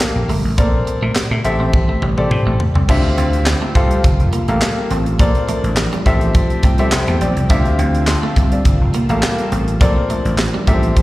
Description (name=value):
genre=early-eighties boogie funk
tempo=104 BPM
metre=4/4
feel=straight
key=D minor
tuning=A4 = 438 Hz
part: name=clear baby grand piano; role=accompaniment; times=0.0-11.0 s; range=Bb3 to C6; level=-21 LUFS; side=left 2 dB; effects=slapback echo
part: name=tight funk drum kit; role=drums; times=0.0-11.0 s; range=crash cymbal, handclaps, hi-hat, kick drum, snare drum, toms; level=-17 LUFS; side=equal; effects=none
part: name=vintage slap bass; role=bass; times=0.2-11.0 s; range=F1 to Bb2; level=-17 LUFS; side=equal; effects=none
part: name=clean electric guitar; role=riff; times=0.3-11.0 s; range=G3 to D4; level=-25 LUFS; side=right 2 dB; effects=wide subtle chorus, slapback echo
part: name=lush unison pad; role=sustained chords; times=2.9-11.0 s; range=D3 to E5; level=-25 LUFS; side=equal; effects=chorus
room=small room ambience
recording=live gig heard through the venue's PA, recital hall reverb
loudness=-13 LUFS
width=side -18 dB against mid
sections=0.0-2.9 A section; 2.9-11.0 B section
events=drum fill 1.7-2.9; grand piano fill 5.8-7.5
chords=0.0 Gm9; 0.6 Bbmaj9; 1.4 Am7; 2.9 Dm11; 4.0 Gm9; 5.2 Bbmaj9; 6.1 Am7; 7.5 Dm11; 8.7 Gm9; 9.8 Bbmaj9